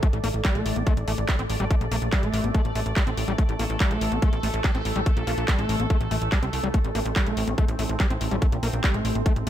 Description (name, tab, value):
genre	psychedelic trance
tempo	143 BPM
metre	4/4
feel	straight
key	A phrygian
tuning	A4 = 439 Hz
part	bubbling stepped-filter texture	sustained chords	0.0-9.5 s	A3 to D5	-31 LUFS	right 1 dB	chorus, built-in reverb, sidechain pumping
part	screaming distorted acid line	riff	0.0-9.5 s	G3 to C4	-30 LUFS	left 1 dB	distortion, chorus, auto-pan, sidechain pumping, digital delay
part	drum and bass drum kit	drums	0.0-9.5 s	handclaps, hi-hat	-31 LUFS	equal	overdrive
part	electronic kick drum	drums	0.0-9.3 s	none	-22 LUFS	equal	overdrive
part	plucky analog bass	bass	0.1-9.5 s	A1 to C2	-27 LUFS	equal	none
room	digital ambience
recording	none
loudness	-22 LUFS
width	side -11 dB against mid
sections	0.0-9.5 A section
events	none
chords	0.0 A5